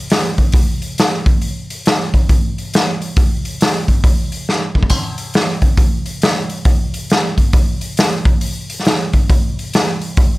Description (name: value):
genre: rock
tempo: 137 BPM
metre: 4/4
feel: swing 64% on 8ths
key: none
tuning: none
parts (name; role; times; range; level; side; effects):
- raw garage drum kit; drums; 0.1-10.3 s; hi-hat, kick drum, snare drum, splash cymbal; -13 LUFS; equal; none
room: light reverb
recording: none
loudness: -13 LUFS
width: side -20 dB against mid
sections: 0.0-10.4 A section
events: drum fill 4.5-4.9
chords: none